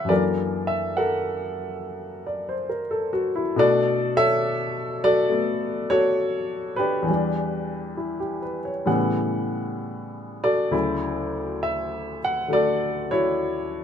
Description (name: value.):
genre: solo jazz.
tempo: 68 BPM.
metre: 4/4.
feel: swing 67% on 8ths, rubato.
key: B minor, D major from 10.7 s.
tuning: A4 = 442 Hz.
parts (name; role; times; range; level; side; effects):
warm grand piano; solo; 0.0-13.8 s; D2 to A5; -22 LUFS; left 1 dB; none.
room: light reverb.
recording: none.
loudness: -22 LUFS.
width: side -8 dB against mid.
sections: 0.0-10.7 A section; 10.7-13.8 B section.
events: none.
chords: 0.1 F#7alt; 3.6 Bm9; 7.1 Em7; 8.9 A13; 10.7 Dmaj9.